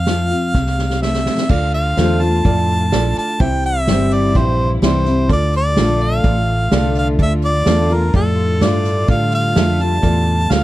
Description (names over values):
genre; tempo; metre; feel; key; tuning
honky-tonk and classic country; 126 BPM; 4/4; straight; D minor; A4 = 439 Hz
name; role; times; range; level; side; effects
warm harmonica; melody; 0.0-10.6 s; A4 to A5; -20 LUFS; equal; none
picked steel-string acoustic guitar; accompaniment; 0.0-10.6 s; F2 to F4; -21 LUFS; left 2 dB; none
vintage muted fingered electric bass; bass; 0.0-10.6 s; G1 to A2; -18 LUFS; equal; none
unplugged drum kit; drums; 0.1-10.6 s; crash cymbal, hi-hat, kick drum, snare drum; -18 LUFS; right 1 dB; none
bright grand piano; accompaniment; 1.5-10.6 s; E4 to F5; -25 LUFS; right 5 dB; none
warm studio string section; sustained chords; 1.5-10.6 s; C3 to F4; -28 LUFS; left 2 dB; none
room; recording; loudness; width
little or no reverb; none; -13 LUFS; side -15 dB against mid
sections
0.0-1.5 A section; 1.5-10.6 B section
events
drum fill 0.6-1.5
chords
0.0 F; 1.5 Dm; 3.4 C; 5.3 Dm